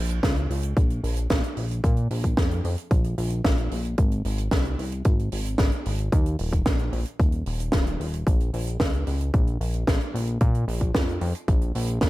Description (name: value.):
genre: italo disco.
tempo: 112 BPM.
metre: 4/4.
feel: straight.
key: Bb minor.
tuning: A4 = 439 Hz.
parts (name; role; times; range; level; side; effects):
chorused synth bass; bass; 0.0-12.1 s; Eb1 to Bb2; -26 LUFS; equal; none.
tight funk drum kit; drums; 0.1-12.1 s; hi-hat, snare drum; -28 LUFS; right 1 dB; gated reverb.
electronic kick drum; drums; 0.2-12.1 s; none; -22 LUFS; equal; none.
room: little or no reverb.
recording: none.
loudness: -22 LUFS.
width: side -18 dB against mid.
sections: 0.0-12.1 A section.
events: none.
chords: none.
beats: 0.23 0.77 1.30 | 1.84 2.37 2.91 3.45 | 3.98 4.52 5.05 5.59 | 6.12 6.66 7.20 7.73 | 8.27 8.80 9.34 9.87 | 10.41 10.95 11.48 12.02.